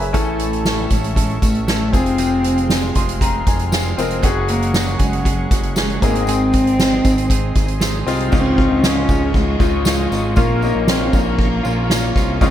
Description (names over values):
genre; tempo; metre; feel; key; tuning
piano-driven pop; 117 BPM; 4/4; straight; Db major; A4 = 440 Hz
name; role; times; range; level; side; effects
clear concert grand piano; accompaniment; 0.0-12.5 s; Ab2 to C6; -22 LUFS; left 4 dB; lush chorus
tonewheel organ; sustained chords; 0.0-12.5 s; F4 to C#6; -31 LUFS; left 1 dB; chorus vibrato, lush chorus
fat analog bass; bass; 0.0-12.5 s; F1 to Db2; -22 LUFS; equal; none
soft-mallet drum kit; drums; 0.0-12.5 s; crash cymbal, hi-hat, kick drum, ride cymbal, snare drum; -18 LUFS; equal; gated reverb
direct-recorded clean electric guitar; riff; 0.1-12.5 s; F2 to A4; -27 LUFS; right 7 dB; none
tambourine; percussion; 0.1-12.5 s; none; -34 LUFS; left 4 dB; none
dark cello; melody; 0.4-12.5 s; Gb3 to Db4; -21 LUFS; equal; none
room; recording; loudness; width
light reverb; bright 1980s-style digital production; -14 LUFS; side -11 dB against mid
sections
0.0-8.3 A section; 8.3-12.5 B section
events
grand piano fill 2.7-4.2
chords
0.1 A; 1.9 Fm; 4.2 Gbsus2; 6.0 Ab; 8.3 Dbadd9; 10.4 Bbm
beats
| 0.14 0.66 1.17 1.68 | 2.19 2.70 3.21 3.73 | 4.24 4.75 5.26 5.77 | 6.28 6.79 7.30 7.81 | 8.32 8.84 9.35 9.86 | 10.37 10.88 11.39 11.90 | 12.41